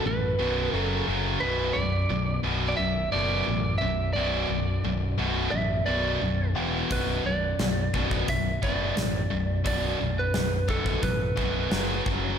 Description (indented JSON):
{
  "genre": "hard rock",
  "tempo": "87 BPM",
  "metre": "4/4",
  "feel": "straight",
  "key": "B minor",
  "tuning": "A4 = 440 Hz",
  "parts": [
    { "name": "lightly driven lead guitar", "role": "melody", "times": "0.0-12.0 s", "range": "A4 to E5", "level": "-30 LUFS", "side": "right 3 dB", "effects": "slapback echo, digital delay" },
    { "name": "heavy high-gain guitar", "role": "riff", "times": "0.0-12.4 s", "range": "B1 to F#3", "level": "-30 LUFS", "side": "left 8 dB", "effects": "distortion, slapback echo" },
    { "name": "scooped high-gain guitar", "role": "riff", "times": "0.0-12.4 s", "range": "B1 to F#3", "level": "-30 LUFS", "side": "right 6 dB", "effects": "distortion, slapback echo" },
    { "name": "modern bright picked electric bass", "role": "bass", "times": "0.1-12.3 s", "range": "B0 to B1", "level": "-31 LUFS", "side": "equal", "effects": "none" },
    { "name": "gated 80s drum kit", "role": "drums", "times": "6.9-12.2 s", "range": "hi-hat, kick drum, snare drum", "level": "-30 LUFS", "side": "equal", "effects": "none" }
  ],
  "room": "moderate concert hall reverb, RT60 2.0 s",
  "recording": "big arena sound",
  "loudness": "-24 LUFS",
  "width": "side -8 dB against mid",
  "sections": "0.0-12.4 A section",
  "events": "none",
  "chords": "0.0 B5; 0.7 F#5; 1.4 Bm; 6.6 E5; 6.9 Bm; 11.7 F#5"
}